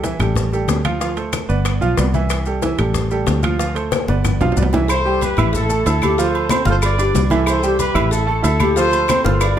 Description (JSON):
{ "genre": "latin, salsa", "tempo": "186 BPM", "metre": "4/4", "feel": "straight", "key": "unclear", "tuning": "A4 = 440 Hz", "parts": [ { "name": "clear grand piano", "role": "accompaniment", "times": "0.0-9.6 s", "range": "E3 to F6", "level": "-21 LUFS", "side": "right 4 dB", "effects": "none" }, { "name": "fingered electric bass", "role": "bass", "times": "0.0-9.6 s", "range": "G1 to D2", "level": "-19 LUFS", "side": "equal", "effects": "none" }, { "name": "bongos and cowbell", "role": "percussion", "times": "0.0-9.6 s", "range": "none", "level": "-28 LUFS", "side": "left 6 dB", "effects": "none" }, { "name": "congas", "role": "percussion", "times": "0.0-9.6 s", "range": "none", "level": "-25 LUFS", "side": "left 3 dB", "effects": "none" }, { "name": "maracas", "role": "percussion", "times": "0.0-9.6 s", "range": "none", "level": "-33 LUFS", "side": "left 9 dB", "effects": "none" }, { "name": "timbales and agogo bells", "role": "percussion", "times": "0.0-9.6 s", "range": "none", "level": "-26 LUFS", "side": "right 8 dB", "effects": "none" }, { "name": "claves", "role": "percussion", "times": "0.2-9.6 s", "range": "none", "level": "-32 LUFS", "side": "left 8 dB", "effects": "none" }, { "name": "mellow trumpet section", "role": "melody", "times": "4.9-9.6 s", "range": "E4 to D5", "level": "-21 LUFS", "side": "equal", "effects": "none" }, { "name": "mellow hollow shakuhachi", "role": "second line", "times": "5.1-9.6 s", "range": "G4 to C5", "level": "-23 LUFS", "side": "left 2 dB", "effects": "none" } ], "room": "light reverb", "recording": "none", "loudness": "-15 LUFS", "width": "side -10 dB against mid", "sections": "0.0-4.9 A section; 4.9-9.6 B section", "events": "drum fill 3.9-4.9, 9.2-9.6", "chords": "0.4 Dmadd11/A; 1.0 Dm7; 1.7 G7; 2.3 C6; 3.0 Dmadd11/A; 3.6 Dm7; 4.2 G7; 4.9 C6; 5.5 A5; 6.2 Dm7; 6.8 G7; 7.5 C6; 8.1 A5; 8.8 Dm7" }